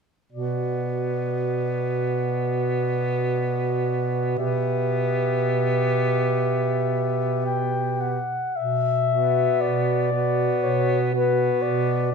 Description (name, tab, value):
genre	classical, lyrical piece for single-reed quartet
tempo	52-62 BPM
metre	4/4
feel	rubato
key	B minor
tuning	A4 = 440 Hz
part	mellow clarinet	melody	0.3-12.1 s	B4 to G5	-27 LUFS	left 9 dB	none
part	bright alto saxophone	second line	0.3-12.1 s	F#4 to G4	-27 LUFS	right 5 dB	none
part	clear tenor saxophone	accompaniment	0.3-12.1 s	B3	-27 LUFS	left 4 dB	none
part	mellow bass clarinet	bass	0.3-12.1 s	B2	-26 LUFS	right 3 dB	none
room	moderate recital hall reverb, RT60 1.3 s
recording	minimal, uncompressed stereo recording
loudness	-21 LUFS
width	side -5 dB against mid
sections	0.3-8.6 A section; 8.6-12.1 B section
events	none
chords	0.3 Bm